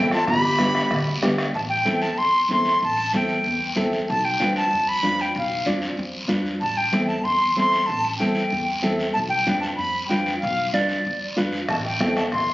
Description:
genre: latin, cumbia.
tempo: 189 BPM.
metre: 4/4.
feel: straight.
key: A minor.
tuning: A4 = 440 Hz.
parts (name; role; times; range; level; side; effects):
silver concert flute; melody; 0.0-12.5 s; D5 to C6; -22 LUFS; equal; none.
breathy clarinet; second line; 0.0-1.2 s; E4 to G4; -29 LUFS; left 1 dB; none.
nylon-string guitar; accompaniment; 0.0-12.2 s; B3 to D5; -26 LUFS; equal; none.
upright bass; bass; 0.0-12.5 s; G1 to F2; -29 LUFS; equal; none.
bombo; percussion; 0.1-1.5, 11.7-12.5 s; none; -28 LUFS; right 1 dB; none.
guiro; percussion; 0.1-12.5 s; none; -31 LUFS; equal; none.
congas; percussion; 0.6-12.2 s; none; -29 LUFS; equal; none.
room: moderate large studio reverb, RT60 0.8 s.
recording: recorded on a phone in the room, club reverb, nothing above 7.5 kHz.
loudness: -19 LUFS.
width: side -17 dB against mid.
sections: 0.0-1.5 A section; 1.5-12.5 B section.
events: none.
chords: 0.3 G; 1.5 Am7; 4.1 Bdim; 6.6 Am7; 9.2 Bdim; 11.7 Am7.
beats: | 0.28 0.60 0.92 1.23 | 1.55 1.86 2.18 2.50 | 2.81 3.13 3.45 3.77 | 4.08 4.40 4.72 5.03 | 5.35 5.67 5.98 6.30 | 6.62 6.93 7.25 7.57 | 7.89 8.20 8.52 8.84 | 9.15 9.47 9.79 10.10 | 10.42 10.74 11.05 11.37 | 11.69 12.00 12.32.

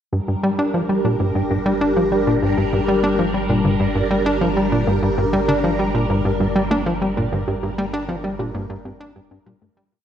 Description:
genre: ambient, sequencer-driven space music.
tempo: 98 BPM.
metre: 4/4.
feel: straight.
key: G minor.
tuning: A4 = 439 Hz.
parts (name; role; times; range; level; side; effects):
phased string machine; sustained chords; 0.1-9.9 s; G3 to Bb4; -22 LUFS; equal; ensemble chorus, phaser.
wide unison pluck; arpeggios; 0.1-9.9 s; G2 to G4; -29 LUFS; equal; none.
tight sequencer bass; riff; 0.1-9.8 s; G2 to D4; -20 LUFS; equal; tape echo.
warm sub bass; bass; 0.1-9.9 s; G1; -30 LUFS; equal; none.
room: wet concert hall reverb, RT60 2.0 s.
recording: worn, warbling old tape, cassette tape, warbly pitch drift.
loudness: -17 LUFS.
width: side -9 dB against mid.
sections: 0.1-9.9 A section.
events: fade-out 6.7-9.9.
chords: 0.1 Gm.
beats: | 0.13 0.74 1.35 1.96 | 2.58 3.19 3.80 4.41 | 5.03 5.64 6.25 6.86 | 7.47 8.09 8.70 9.31.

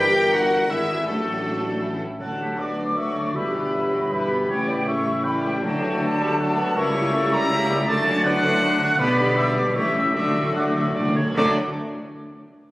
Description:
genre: classical.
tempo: 158 BPM.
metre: 3/4.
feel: rubato.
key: D major.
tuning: A4 = 444 Hz.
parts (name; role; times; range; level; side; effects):
rich symphonic violin section; melody; 0.0-11.6 s; E4 to G5; -34 LUFS; left 1 dB; none.
clear clarinet; second line; 0.0-11.5 s; A3 to A4; -29 LUFS; equal; none.
flute section; second line; 0.0-11.6 s; A4 to A6; -27 LUFS; equal; none.
warm oboe; second line; 0.0-11.5 s; A4 to G5; -29 LUFS; left 1 dB; none.
warm symphonic violin section; second line; 0.0-11.6 s; B3 to F#4; -35 LUFS; left 1 dB; none.
rich symphonic viola section; accompaniment; 0.0-11.6 s; E3 to G4; -34 LUFS; equal; none.
warm French horn section; sustained chords; 0.0-11.5 s; G3 to Bb4; -29 LUFS; left 1 dB; none.
warm trombone section; sustained chords; 0.0-11.5 s; A2 to D4; -31 LUFS; right 1 dB; none.
warm trumpet; stabs; 0.0-11.5 s; G4 to A#5; -30 LUFS; equal; none.
clear symphonic cello section; bass; 0.0-11.6 s; D2 to D3; -31 LUFS; equal; none.
dark tuba; bass; 0.0-11.5 s; G1 to D2; -29 LUFS; equal; none.
rich symphonic double bass section; bass; 0.0-11.6 s; G1 to D2; -34 LUFS; equal; none.
clear bassoon; accompaniment; 2.2-11.5 s; E3 to C#4; -30 LUFS; equal; none.
timpani; percussion; 2.2-2.7, 5.6-6.2, 10.2-11.6 s; D3; -29 LUFS; equal; none.
room: wet scoring stage reverb, RT60 1.7 s.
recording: recorded on a phone in the room, club ambience, compression.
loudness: -19 LUFS.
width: side -18 dB against mid.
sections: 0.0-2.2 A section; 2.2-11.4 B section; 11.4-12.5 C section.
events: slowing down 8.4-11.4; timpani fill 10.2-11.4.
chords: 0.0 Em7b5/G; 0.7 E7/G#; 1.1 D/A; 1.8 A; 2.2 D; 3.4 Em/G; 4.5 A7; 5.6 D; 6.8 C#dim7; 7.9 D; 9.0 G/B; 9.8 A7; 10.2 D.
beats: 0.34 0.70 | 1.06 1.44 1.82 | 2.20 2.59 2.97 | 3.35 3.74 4.12 | 4.50 4.88 5.26 | 5.64 6.02 6.39 | 6.77 7.14 7.51 | 7.88 8.26 8.63 | 9.00 9.38 9.76 | 10.16 10.56 10.97 | 11.38.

